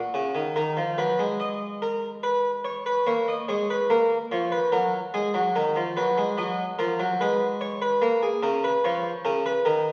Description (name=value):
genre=classical, baroque-style two-part invention for harpsichord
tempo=73 BPM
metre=3/4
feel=straight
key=B major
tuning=A4 = 435 Hz
part: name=harpsichord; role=solo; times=0.0-9.9 s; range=C#3 to D#5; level=-25 LUFS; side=equal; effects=none
room=wet recital hall reverb, RT60 1.5 s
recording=very old 78 rpm record, vinyl crackle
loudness=-25 LUFS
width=mono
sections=0.6-9.9 A section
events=none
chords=0.0 F#5; 0.6 Bmaj7/D#; 2.2 G#madd11; 3.1 A#m7; 4.7 F#add9; 5.6 B/D#; 7.2 G#madd11; 8.0 A#m